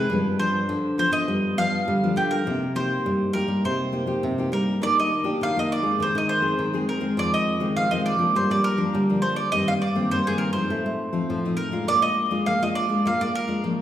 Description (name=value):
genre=samba and choro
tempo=102 BPM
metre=4/4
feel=straight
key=C minor, Eb major from 4.8 s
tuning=A4 = 440 Hz
part: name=mandolin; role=melody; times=0.0-13.8 s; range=G4 to F5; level=-24 LUFS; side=right 2 dB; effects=none
part: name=nylon-string guitar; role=accompaniment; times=0.0-13.8 s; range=F2 to Ab4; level=-26 LUFS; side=left 2 dB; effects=none
part: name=nylon-string guitar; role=bass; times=0.0-13.8 s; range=C3 to Bb3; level=-26 LUFS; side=equal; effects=none
room=wet recital hall reverb, RT60 1.7 s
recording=recorded in a church or concert hall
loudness=-21 LUFS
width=side -11 dB against mid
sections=0.0-4.8 A section; 4.8-13.8 B section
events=none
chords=0.1 G7; 2.5 Cm7; 4.8 Ebmaj7; 6.0 Ab/Eb; 7.2 Fm7; 8.4 Gm7; 9.5 Cm7/G; 10.7 F7/A; 11.9 Bb7